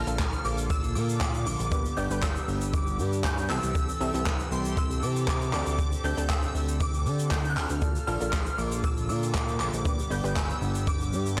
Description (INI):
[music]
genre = dance-pop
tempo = 118 BPM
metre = 4/4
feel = straight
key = unclear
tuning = A4 = 435 Hz
[part]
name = shimmering bell with halo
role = melody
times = 0.0-11.4 s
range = C6 to G6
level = -37 LUFS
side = equal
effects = ensemble chorus, phaser, digital delay
[part]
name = analog pluck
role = accompaniment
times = 0.0-11.1 s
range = Bb3 to D5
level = -38 LUFS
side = equal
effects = chorus, sidechain pumping
[part]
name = chorused pulse-width pad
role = sustained chords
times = 0.0-11.4 s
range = D3 to A4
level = -38 LUFS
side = equal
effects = sidechain pumping
[part]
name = chorused synth bass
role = bass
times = 0.0-11.4 s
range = G1 to D3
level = -32 LUFS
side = equal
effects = sidechain pumping
[part]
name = jazz brush drum kit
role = drums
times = 0.1-11.4 s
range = handclaps, hi-hat, kick drum, shaker, snare drum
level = -32 LUFS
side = equal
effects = none
[part]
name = egg shaker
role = percussion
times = 0.1-11.4 s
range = none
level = -54 LUFS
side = equal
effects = none
[sound]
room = small room ambience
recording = blown-out, overdriven recording, overdrive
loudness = -28 LUFS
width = mono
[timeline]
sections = 0.0-11.4 A section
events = none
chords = 0.0 Bbmaj7; 1.7 G; 3.5 C6; 5.5 D7sus4; 7.8 Bbmaj7; 9.9 G